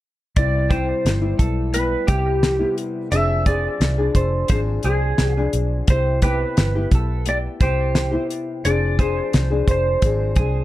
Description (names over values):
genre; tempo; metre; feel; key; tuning
indie pop, bedroom pop; 87 BPM; 4/4; straight; C major; A4 = 440 Hz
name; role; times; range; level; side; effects
clean lap steel guitar; melody; 0.4-10.6 s; G4 to E5; -24 LUFS; right 1 dB; lush chorus, plate reverb, tape echo
nylon-string guitar; accompaniment; 0.4-10.6 s; C3 to Ab4; -25 LUFS; left 4 dB; wide subtle chorus, vibrato effect, plate reverb
vintage muted fingered electric bass; bass; 0.4-10.6 s; F1 to C2; -22 LUFS; equal; none
damped 70s drum kit; drums; 0.4-10.5 s; hi-hat, kick drum, snare drum; -19 LUFS; equal; none
electric guitar through a small old amp; second line; 0.7-10.6 s; G4 to C5; -30 LUFS; right 3 dB; wide subtle chorus, plate reverb, tape echo
room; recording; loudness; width
moderate studio ambience, RT60 0.5 s; dark, warm production; -17 LUFS; side -15 dB against mid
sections
0.4-10.6 A section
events
none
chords
0.4 Cmaj7; 3.1 Fm6; 5.9 Cmaj7; 8.6 Fm6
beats
| 0.36 1.05 1.74 2.43 | 3.12 3.81 4.50 5.19 | 5.88 6.57 7.26 7.95 | 8.64 9.33 10.02